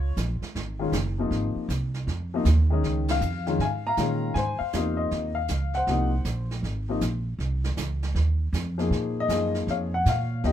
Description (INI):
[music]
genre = jazz piano trio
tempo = 158 BPM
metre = 4/4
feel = swing 65% on 8ths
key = Ab mixolydian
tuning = A4 = 440 Hz
[part]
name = warm upright piano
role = melody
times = 0.0-10.5 s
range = C3 to Bb5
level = -27 LUFS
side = left 4 dB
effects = none
[part]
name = upright bass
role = bass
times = 0.0-10.5 s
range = Gb1 to Bb2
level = -26 LUFS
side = right 1 dB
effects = none
[part]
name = jazz brush drum kit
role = drums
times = 0.2-10.5 s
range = brushed snare drum, hi-hat, ride cymbal, snare drum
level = -36 LUFS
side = right 5 dB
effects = none
[sound]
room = moderate club reverb, RT60 0.5 s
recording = minimal, uncompressed stereo recording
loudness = -24 LUFS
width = side -10 dB against mid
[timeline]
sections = 0.0-10.5 A section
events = band accent 3.0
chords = 0.0 Db; 1.3 Ab; 2.8 Db; 4.4 Ab; 7.4 F5; 8.9 Bbm7